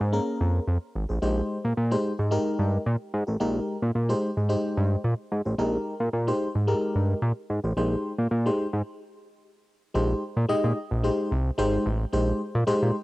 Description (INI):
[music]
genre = funk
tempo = 110 BPM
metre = 4/4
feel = straight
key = unclear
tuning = A4 = 440 Hz
[part]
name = fat analog bass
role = bass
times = 0.0-12.9 s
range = Ab1 to Bb2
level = -24 LUFS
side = equal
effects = none
[part]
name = FM electric piano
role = accompaniment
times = 0.1-13.0 s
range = Ab3 to Eb5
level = -27 LUFS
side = left 1 dB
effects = chorus, phaser, cassette tape
[sound]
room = light reverb, digital ambience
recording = home recording on cassette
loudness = -24 LUFS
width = side -19 dB against mid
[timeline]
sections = 0.0-10.0 A section; 10.0-13.0 B section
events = stop 8.9-10.0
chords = 0.0 Bbm7; 1.2 Abmaj7